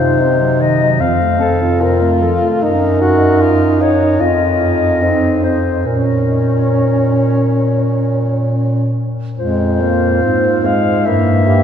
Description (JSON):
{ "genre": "classical, lyrical piece for single-reed quartet", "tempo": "67-77 BPM", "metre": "4/4", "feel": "rubato", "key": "Bb minor", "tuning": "A4 = 438 Hz", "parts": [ { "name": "dark clarinet", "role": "melody", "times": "0.0-11.6 s", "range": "A4 to F5", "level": "-17 LUFS", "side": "left 4 dB", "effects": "none" }, { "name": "mellow alto saxophone", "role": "second line", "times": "0.0-11.6 s", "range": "Eb3 to G4", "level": "-19 LUFS", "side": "right 4 dB", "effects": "none" }, { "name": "mellow tenor saxophone", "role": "accompaniment", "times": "0.0-11.6 s", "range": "Ab3 to A4", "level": "-18 LUFS", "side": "left 2 dB", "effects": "none" }, { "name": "clear bass clarinet", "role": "bass", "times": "0.0-11.6 s", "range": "F2 to C3", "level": "-16 LUFS", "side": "right 1 dB", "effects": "none" } ], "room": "wet cathedral reverb, RT60 5.7 s", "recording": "recorded in a church or concert hall, nothing above 10.3 kHz", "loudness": "-12 LUFS", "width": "side -8 dB against mid", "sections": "0.0-9.4 A section; 9.4-11.6 B section", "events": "none", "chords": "0.0 Cdim; 1.0 F; 2.6 Ebm/Gb; 4.2 Cmadd11/F; 5.9 Bbm; 9.4 Fm; 11.1 Edim/G" }